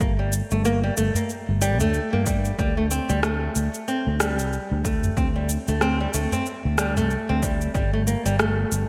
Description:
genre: organic downtempo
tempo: 93 BPM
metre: 4/4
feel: swing 58% on 16ths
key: G minor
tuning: A4 = 441 Hz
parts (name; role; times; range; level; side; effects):
- flamenco guitar; arpeggios; 0.0-8.9 s; G3 to C4; -28 LUFS; equal; delay
- sustaining fretless electric bass; bass; 0.0-8.8 s; G1 to G2; -26 LUFS; equal; tube saturation, ensemble chorus, sidechain pumping
- electronic cabasa and rim click; drums; 0.0-8.9 s; none; -30 LUFS; equal; gated reverb
- electronic kick drum; drums; 0.0-7.9 s; none; -28 LUFS; equal; overdrive
- udu; percussion; 1.1-7.1 s; none; -33 LUFS; equal; none
room: moderate plate reverb, RT60 3.0 s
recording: bright 1980s-style digital production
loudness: -23 LUFS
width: mono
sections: 0.0-8.9 A section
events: none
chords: 0.0 Gmadd9; 2.6 D7sus4; 7.7 Gmadd9

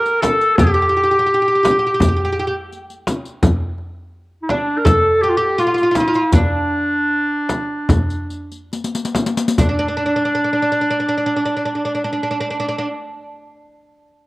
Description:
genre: Arabic maqam ensemble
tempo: 68-85 BPM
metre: 4/4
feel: straight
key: D maqam bayati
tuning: A4 = 440 Hz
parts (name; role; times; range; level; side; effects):
- warm clarinet; melody; 0.0-12.7 s; D4 to Bb4; -17 LUFS; equal; cassette tape
- oud; second line; 0.0-12.9 s; D4 to Bb4; -20 LUFS; right 1 dB; cassette tape
- riq; percussion; 0.1-10.0 s; none; -23 LUFS; left 3 dB; none
- darbuka; percussion; 0.2-10.0 s; none; -22 LUFS; equal; none
- frame drum; percussion; 0.2-10.0 s; none; -17 LUFS; equal; none
room: wet spring reverb, RT60 1.3 s, small room ambience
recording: home recording on cassette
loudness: -15 LUFS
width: side -19 dB against mid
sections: 0.0-9.6 A section; 9.6-13.1 B section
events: slowing down 3.4-9.6; drum fill 8.7-9.6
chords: none

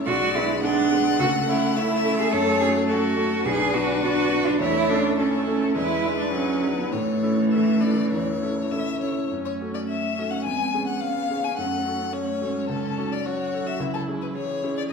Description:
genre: quick classical-period movement for piano quartet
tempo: 106 BPM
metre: 4/4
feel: rubato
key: A major, F# minor from 9.3 s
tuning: A4 = 441 Hz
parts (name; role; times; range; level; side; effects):
- warm violin; melody; 0.0-14.8 s; A4 to G#5; -28 LUFS; left 6 dB; none
- bright baby grand piano; accompaniment; 0.0-14.9 s; B1 to A4; -27 LUFS; equal; none
- warm viola; accompaniment; 0.0-14.9 s; E3 to G#4; -29 LUFS; equal; none
- rich cello; second line; 0.1-14.9 s; E3 to A4; -25 LUFS; right 3 dB; none
room: wet recital hall reverb, RT60 1.4 s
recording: heard from further back in the room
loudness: -21 LUFS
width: side -5 dB against mid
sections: 0.0-9.3 A section; 9.3-14.9 B section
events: none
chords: 0.1 G#dim/B; 1.2 A/C#; 2.3 F#m; 3.4 Bm; 4.6 A/E; 5.7 E7; 6.9 A; 9.3 F#m; 10.4 C#/E#; 11.6 F#m; 13.8 C#m

